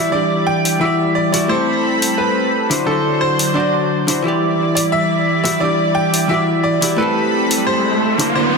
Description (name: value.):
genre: liquid drum and bass.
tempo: 175 BPM.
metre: 4/4.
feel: straight.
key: E minor.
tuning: A4 = 439 Hz.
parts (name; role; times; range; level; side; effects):
bright grand piano; melody; 0.0-8.6 s; A4 to G5; -19 LUFS; equal; dub echo.
vintage hollow-body jazz guitar; accompaniment; 0.0-8.6 s; D3 to D5; -18 LUFS; equal; low-pass filter, digital delay.
lush unison pad; sustained chords; 0.0-8.6 s; F#3 to B5; -20 LUFS; left 1 dB; chorus.
electronic hi-hat; drums; 0.7-8.3 s; none; -19 LUFS; left 1 dB; none.
riser; sound effects; 7.4-8.6 s; none; -20 LUFS; right 4 dB; none.
room: wet concert hall reverb, RT60 1.8 s.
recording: dense, heavily limited modern master.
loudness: -14 LUFS.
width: side -4 dB against mid.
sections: 0.0-8.6 A section.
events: riser 7.4-8.6.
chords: 0.0 Em7; 1.5 Am9; 2.7 D7; 4.3 Em7; 7.0 Am9.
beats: | 0.14 0.48 0.82 1.17 | 1.51 1.85 2.19 2.54 | 2.88 3.22 3.57 3.91 | 4.25 4.59 4.94 5.28 | 5.62 5.97 6.31 6.65 | 7.00 7.34 7.68 8.02 | 8.37.